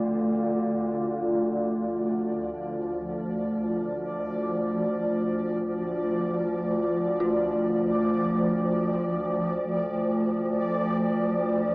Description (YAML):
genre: dark ambient drone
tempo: free time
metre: none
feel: none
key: D minor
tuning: A4 = 440 Hz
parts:
  - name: deep dark ambient pad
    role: sustained chords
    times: 0.0-11.7 s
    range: A3 to D5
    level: -27 LUFS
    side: equal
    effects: chorus, built-in reverb
  - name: dark detuned synth bell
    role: arpeggios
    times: 0.0-11.7 s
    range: C4 to F4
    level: -35 LUFS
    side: equal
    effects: none
  - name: swarming drone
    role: drone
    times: 0.0-11.7 s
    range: D2 to F3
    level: -30 LUFS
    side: equal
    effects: built-in reverb
  - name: bubbling stepped-filter texture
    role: texture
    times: 2.3-11.7 s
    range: D5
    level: -32 LUFS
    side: equal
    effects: chorus, built-in reverb
room: wet cathedral reverb, RT60 6.0 s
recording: worn, warbling old tape, cassette tape, warbly pitch drift, small speaker sound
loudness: -24 LUFS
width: side -27 dB against mid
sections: 0.0-1.7 A section; 1.7-11.7 B section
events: none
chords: 0.0 Dm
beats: free time